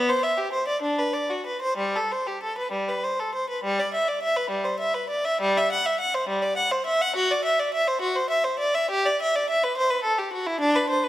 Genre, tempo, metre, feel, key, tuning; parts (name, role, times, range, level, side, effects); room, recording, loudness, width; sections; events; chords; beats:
classical, baroque-style suite movement for unaccompanied violin; 61-72 BPM (dotted quarters); 6/8; rubato; G major; A4 = 439 Hz
clear violin; solo; 0.0-11.1 s; G3 to F#5; -22 LUFS; equal
moderate scoring stage reverb, RT60 1.6 s; -22 LUFS; side -14 dB against mid
0.0-3.6 A section; 3.6-11.1 B section
0.81 | 1.77 2.71 | 3.63 4.51 | 5.42 6.29 | 7.15 8.01 | 8.90 9.77 | 10.61